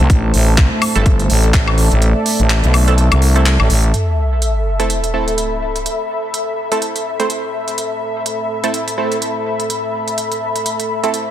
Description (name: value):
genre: bass house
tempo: 125 BPM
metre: 4/4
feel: swing 57% on 16ths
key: A minor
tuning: A4 = 440 Hz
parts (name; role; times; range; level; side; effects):
- dark analog pad; sustained chords; 0.0-11.3 s; A3 to A5; -25 LUFS; right 1 dB; chorus, sidechain pumping
- growling FM bass; bass; 0.0-3.9 s; G1 to C2; -12 LUFS; equal; tube saturation, sidechain pumping
- garage drum kit; drums; 0.0-11.2 s; handclaps, hi-hat, woodblock; -20 LUFS; equal; none
- airy breathy pad; texture; 0.0-11.3 s; A4 to B5; -21 LUFS; left 1 dB; chorus, sidechain pumping
- electronic kick drum; drums; 0.1-1.6 s; none; -14 LUFS; equal; none
- band-passed chord stab; stabs; 1.0-11.1 s; A3 to C5; -22 LUFS; right 4 dB; chorus, phaser, sidechain pumping, ping-pong delay
- sub drop; sound effects; 3.9-5.9 s; none; -19 LUFS; equal; none
room: light reverb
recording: dense, heavily limited modern master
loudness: -14 LUFS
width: side -11 dB against mid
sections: 0.0-3.9 A section; 3.9-11.3 B section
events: kick drops out 2.0-3.9; impact 3.9-5.9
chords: 0.0 Am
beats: | 0.10 0.58 1.06 1.54 | 2.02 2.50 2.98 3.46 | 3.94 4.42 4.90 5.38 | 5.86 6.34 6.82 7.30 | 7.78 8.26 8.74 9.22 | 9.70 10.18 10.66 11.14